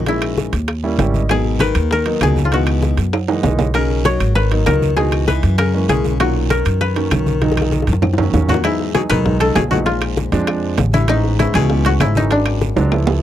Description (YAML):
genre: Afro-Cuban jazz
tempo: 196 BPM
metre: 4/4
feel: straight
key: B major, E major from 8.6 s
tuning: A4 = 440 Hz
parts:
  - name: koto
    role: melody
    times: 0.0-13.2 s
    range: D4 to C#5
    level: -20 LUFS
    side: left 1 dB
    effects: none
  - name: clear baritone saxophone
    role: second line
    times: 0.0-12.9 s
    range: F#2 to F#3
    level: -24 LUFS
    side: left 10 dB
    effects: none
  - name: upright bass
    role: bass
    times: 0.0-13.2 s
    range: G#1 to F#2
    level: -18 LUFS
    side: equal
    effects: none
  - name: warm concert grand piano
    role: accompaniment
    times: 0.1-13.2 s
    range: A#2 to G5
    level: -22 LUFS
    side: right 4 dB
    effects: none
  - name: bongos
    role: percussion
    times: 0.1-13.1 s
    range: none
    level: -24 LUFS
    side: left 5 dB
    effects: none
  - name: congas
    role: percussion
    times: 0.1-13.2 s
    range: none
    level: -23 LUFS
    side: left 1 dB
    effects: none
  - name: guiro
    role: percussion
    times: 0.1-13.2 s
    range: none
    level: -36 LUFS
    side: right 19 dB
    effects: none
  - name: timbales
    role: percussion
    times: 0.1-13.1 s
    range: none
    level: -22 LUFS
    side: right 8 dB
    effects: none
  - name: claves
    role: percussion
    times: 0.2-13.1 s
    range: none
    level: -30 LUFS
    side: left 17 dB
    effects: none
room: light reverb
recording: dry, close 1970s-style studio recording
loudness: -14 LUFS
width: side -12 dB against mid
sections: 0.0-8.6 A section; 8.6-13.2 B section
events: grand piano fill 0.8-1.3; drum fill 3.1-3.7, 7.4-8.6, 12.8-13.2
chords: 0.1 A#m7b5; 0.7 D#7b9; 1.3 G#m7; 2.5 C#m9; 3.1 F#13; 3.7 G#m7; 5.0 C#m7; 5.6 F#9; 6.2 Bmaj7; 8.6 Emaj7; 9.9 A#9; 11.1 Amaj9; 12.3 G#m7b5